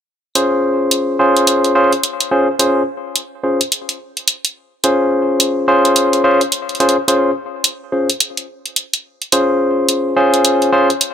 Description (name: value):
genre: glitch hop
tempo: 107 BPM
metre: 4/4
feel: swing 61% on 16ths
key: unclear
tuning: A4 = 440 Hz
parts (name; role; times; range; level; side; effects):
- barky tine electric piano; stabs; 0.4-10.9 s; Db4 to C5; -13 LUFS; equal; overdrive, low-pass filter, ping-pong delay
- electronic hi-hat; drums; 0.4-11.1 s; none; -16 LUFS; right 1 dB; none
room: light reverb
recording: none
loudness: -13 LUFS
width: side -8 dB against mid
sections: 0.4-11.1 A section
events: none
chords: 0.4 Dbmaj7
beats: | 0.35 0.91 1.48 2.04 | 2.60 3.16 3.72 4.28 | 4.84 5.40 5.96 6.52 | 7.08 7.64 8.20 8.77 | 9.32 9.89 10.45 11.01